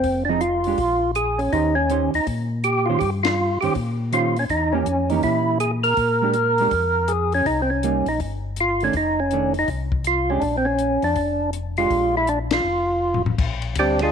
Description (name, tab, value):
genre	soul jazz organ trio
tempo	162 BPM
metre	4/4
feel	swing 64% on 8ths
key	unclear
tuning	A4 = 440 Hz
part	percussive tonewheel organ	melody	0.0-14.1 s	G3 to Bb4	-20 LUFS	right 1 dB	slow rotary speaker, overdrive
part	mellow tonewheel organ	bass	0.0-14.1 s	F1 to Bb2	-26 LUFS	left 2 dB	slow rotary speaker
part	compact cocktail drum kit	drums	0.0-14.1 s	crash cymbal, hi-hat, kick drum, ride cymbal, snare drum, toms	-28 LUFS	left 5 dB	none
part	hollow-body jazz guitar	accompaniment	0.3-14.1 s	Eb3 to C5	-27 LUFS	right 10 dB	none
room	light reverb, small room ambience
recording	1960s-style stereo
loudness	-19 LUFS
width	side -7 dB against mid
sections	0.0-13.4 A section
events	band accent 3.2, 12.5; drum fill 13.0-13.4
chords	0.0 Fm7; 0.8 Bb5; 1.5 Eb13; 4.5 Edim7; 6.0 Bb6; 7.5 Cm7; 8.9 F13; 10.4 Bb6; 12.6 N.C.; 13.4 Bb13